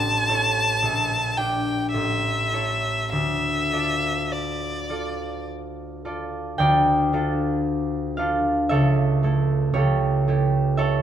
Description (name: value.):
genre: classical, romantic duo for violin and harp.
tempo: 50-58 BPM.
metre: 3/4.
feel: rubato.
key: D minor.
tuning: A4 = 441 Hz.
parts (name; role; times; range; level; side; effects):
rich violin; melody; 0.0-5.5 s; D5 to A5; -23 LUFS; left 1 dB; none.
concert harp; accompaniment; 0.0-11.0 s; A1 to G5; -22 LUFS; right 1 dB; none.
room: moderate concert hall reverb, RT60 1.7 s.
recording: close, detailed microphones.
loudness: -20 LUFS.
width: side -10 dB against mid.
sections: 0.0-6.6 A section; 6.6-11.0 A section.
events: none.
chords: 0.0 A; 0.8 Gm/Bb; 1.9 A; 3.1 Dm; 8.7 A/C#.